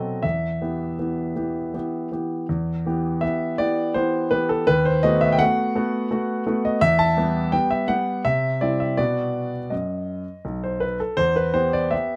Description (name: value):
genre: classical-period piano sonatina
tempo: 82 BPM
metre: 3/4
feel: rubato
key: E minor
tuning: A4 = 440 Hz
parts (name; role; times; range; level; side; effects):
- clear grand piano; solo; 0.0-12.2 s; B1 to A5; -23 LUFS; equal; none
room: little or no reverb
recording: close, detailed microphones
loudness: -23 LUFS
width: mono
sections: 0.0-2.5 A section; 2.5-12.2 A section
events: none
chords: 0.2 Em; 4.7 B7/D#; 6.8 Em; 8.3 C; 9.0 B; 11.2 Em